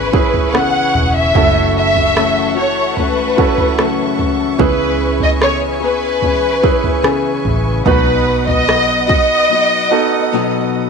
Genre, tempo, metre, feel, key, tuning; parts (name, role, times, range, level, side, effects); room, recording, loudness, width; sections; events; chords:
pop ballad; 74 BPM; 4/4; straight; C# minor; A4 = 441 Hz
warm studio violin section; melody; 0.0-10.7 s; B4 to F#5; -16 LUFS; left 1 dB; tape echo
bright concert grand piano; accompaniment; 0.0-10.9 s; B2 to B4; -20 LUFS; right 14 dB
warm studio string section; sustained chords; 0.0-10.9 s; A4 to D#6; -24 LUFS; left 2 dB
nylon-string guitar; arpeggios; 0.0-10.9 s; F#2 to G#4; -20 LUFS; left 10 dB
vintage muted fingered electric bass; bass; 0.0-9.5 s; E1 to C#2; -21 LUFS; equal
pop drum kit; drums; 0.1-9.3 s; kick drum, rim click, toms; -18 LUFS; right 1 dB; overdrive
light reverb; 1960s-style stereo with parts hard left and right; -12 LUFS; side -5 dB against mid
0.0-10.9 A section
0.0 C#m7; 1.4 F#m7; 4.6 C#m7; 7.9 B